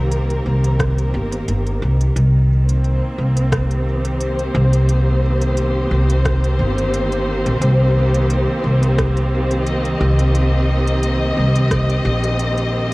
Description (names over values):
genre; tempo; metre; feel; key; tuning
ambient dub; 88 BPM; 4/4; swing 54% on 16ths; C minor; A4 = 440 Hz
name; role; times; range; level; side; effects
dark studio string section; sustained chords; 0.0-12.9 s; Eb3 to Eb5; -21 LUFS; equal; none
upright bass; bass; 0.0-12.9 s; G1 to C2; -16 LUFS; equal; none
organic electronic drum kit; drums; 0.1-12.9 s; hi-hat, rim click; -27 LUFS; equal; overdrive, dub echo
electronic kick drum; drums; 0.8-11.9 s; none; -23 LUFS; equal; none
room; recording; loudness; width
studio reverb; home recording on cassette; -15 LUFS; side -22 dB against mid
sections
0.0-2.2 A section; 2.2-12.9 B section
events
none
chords
0.0 Cm7